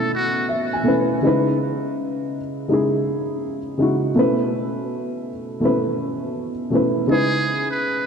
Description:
hip hop; 82 BPM; 4/4; swing 64% on 16ths; C# minor; A4 = 440 Hz
trumpet with metal mute; melody; 0.0-0.5, 7.1-8.1 s; F#4 to B4; -24 LUFS; right 1 dB; analog delay
felt-muted upright piano; accompaniment; 0.0-8.1 s; B2 to G#5; -19 LUFS; equal
wet lush hall reverb, RT60 2.5 s; dreamy mix soaked in reverb, cassette tape; -19 LUFS; side -6 dB against mid
0.0-8.1 A section
0.0 B7sus4; 1.2 C#m9; 4.2 B7sus4; 7.1 C#m9
0.50 | 1.23 1.96 2.69 3.42 | 4.16 4.89 5.62 6.35 | 7.08 7.81

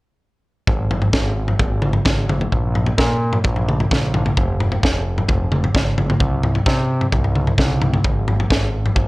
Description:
math rock and midwest emo; 130 BPM; 4/4; straight; A4 = 440 Hz
growling picked electric bass; bass; 0.7-9.1 s; F1 to C3; -20 LUFS; equal; overdrive
crisp fusion drum kit; drums; 0.7-9.1 s; kick drum, snare drum, toms; -18 LUFS; equal
light reverb; worn, warbling old tape, cassette tape, warbly pitch drift; -16 LUFS; side -22 dB against mid
0.7-9.1 A section
| 0.68 1.14 1.60 2.06 | 2.52 2.98 3.44 3.90 | 4.36 4.82 5.28 5.74 | 6.20 6.66 7.12 7.58 | 8.04 8.50 8.96

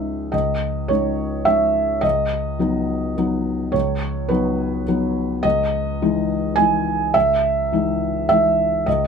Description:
neoclassical minimalist piano; 105 BPM; 3/4; rubato; C# minor; A4 = 440 Hz
felt-muted upright piano; solo; 0.0-9.1 s; C#2 to G#5; -18 LUFS; equal
light reverb; -18 LUFS; side -6 dB against mid
0.0-9.1 A section
0.0 C#madd9; 2.0 B/C#; 5.4 C#madd9
| 0.33 0.90 1.47 | 2.04 2.60 3.17 | 3.74 4.30 4.87 | 5.44 6.01 6.58 | 7.15 7.71 8.29 | 8.86

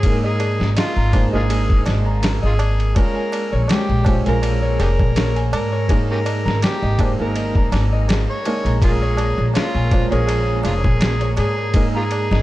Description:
trip hop; 82 BPM; 4/4; swing 55% on 16ths; Bb minor; A4 = 440 Hz
overdriven harmonica; melody; 0.0-12.4 s; Ab3 to Db5; -25 LUFS; equal; dub echo
felt-muted upright piano; accompaniment; 0.0-12.4 s; Ab3 to C5; -26 LUFS; right 2 dB; tremolo, vintage 12-bit sampler grit
Celtic harp; arpeggios; 0.0-12.4 s; Ab3 to Bb5; -28 LUFS; left 2 dB; dub echo
upright bass; bass; 0.0-12.4 s; F1 to Ab2; -19 LUFS; equal; tube saturation
dusty soul sampler-style drum kit; drums; 0.0-12.4 s; kick drum, ride cymbal, snare drum; -21 LUFS; equal; overdrive, vintage 12-bit sampler grit
tabla; percussion; 0.0-12.4 s; -33 LUFS; right 4 dB
wind-like tuned noise texture; texture; 0.0-12.4 s; Bb3 to Bb4; -33 LUFS; right 1 dB
studio reverb; dark, warm production; -16 LUFS; side -16 dB against mid
0.0-12.4 A section
0.0 Absus2; 3.0 Bbm7; 5.9 Absus2; 8.8 Bbm7; 11.7 Absus2
| 0.04 0.77 1.50 2.23 | 2.96 3.69 4.43 5.16 | 5.89 6.62 7.35 8.08 | 8.82 9.55 10.28 11.01 | 11.74

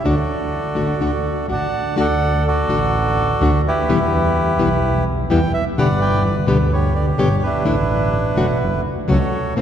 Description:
tango; 126 BPM; 4/4; rubato; D major; A4 = 442 Hz
bandoneon; melody; 0.0-9.5 s; D4 to A5; -20 LUFS; right 1 dB
nylon-string guitar; accompaniment; 0.0-9.6 s; B2 to G4; -21 LUFS; left 2 dB
dark double bass; bass; 0.0-9.6 s; E1 to E2; -20 LUFS; right 1 dB
wet cathedral reverb, RT60 4.9 s; recorded in a church or concert hall; -16 LUFS; side -9 dB against mid
0.0-2.0 A section; 2.0-9.6 B section
0.1 D; 3.9 Em; 5.8 G; 7.7 Asus4; 8.6 F#m
| 0.06 0.53 1.01 1.49 | 1.97 2.45 2.93 3.41 | 3.88 4.35 4.83 5.30 | 5.77 6.24 6.71 7.19 | 7.66 8.13 8.61 9.08 | 9.56

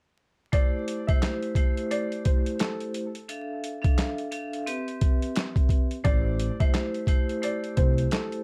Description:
hip hop, boom-bap hip-hop; 87 BPM; 4/4; swing 61% on 16ths; A minor; A4 = 436 Hz
warm upright piano; melody; 0.5-8.4 s; A4 to E5; -37 LUFS; equal; high-pass filter, low-pass filter, delay
vibraphone with hard mallets; accompaniment; 0.5-8.4 s; A3 to F5; -34 LUFS; equal; high-pass filter, low-pass filter
boom bap sampler-style drum kit; drums; 0.5-8.4 s; handclaps, hi-hat, kick drum, snare drum; -26 LUFS; equal
upright bass; bass; 6.0-8.0 s; A1 to C2; -29 LUFS; equal
little or no reverb; dark, warm production, vinyl crackle; -27 LUFS; mono
0.5-8.4 A section
0.5 Am7; 3.3 Dmadd9; 4.7 Cmaj7; 6.0 Am7
| 0.53 1.22 1.91 2.60 | 3.29 3.98 4.67 5.36 | 6.05 6.74 7.42 8.12

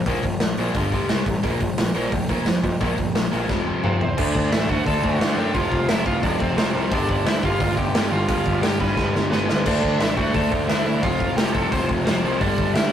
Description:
punk rock; 175 BPM; 4/4; straight; A4 = 444 Hz
overdriven electric guitar; riff; 0.0-12.9 s; F2 to D4; -23 LUFS; left 1 dB
fuzz picked electric bass; bass; 0.1-12.9 s; F1 to F#2; -26 LUFS; equal; overdrive
raw garage drum kit; drums; 0.1-12.8 s; crash cymbal, hi-hat, kick drum, snare drum, toms; -23 LUFS; equal
overdriven electric guitar; melody; 3.8-12.9 s; B3 to C6; -26 LUFS; right 1 dB
moderate booth ambience, RT60 0.2 s; rough rehearsal-room recording, tube saturation; -19 LUFS; side -9 dB against mid
0.0-4.2 A section; 4.2-12.9 B section
drum fill 3.5-4.2, 9.0-9.7
0.0 Bb5; 0.8 G5; 1.1 C5; 1.4 Bb5; 3.5 F5; 4.2 D; 5.5 F5; 6.9 G; 9.7 D; 11.0 F; 12.4 G5
| 0.06 0.41 0.75 1.09 | 1.44 1.78 2.12 2.47 | 2.81 3.15 3.50 3.84 | 4.18 4.52 4.87 5.21 | 5.55 5.89 6.23 6.58 | 6.92 7.26 7.60 7.95 | 8.29 8.63 8.97 9.32 | 9.66 10.00 10.35 10.69 | 11.03 11.38 11.72 12.06 | 12.41 12.75

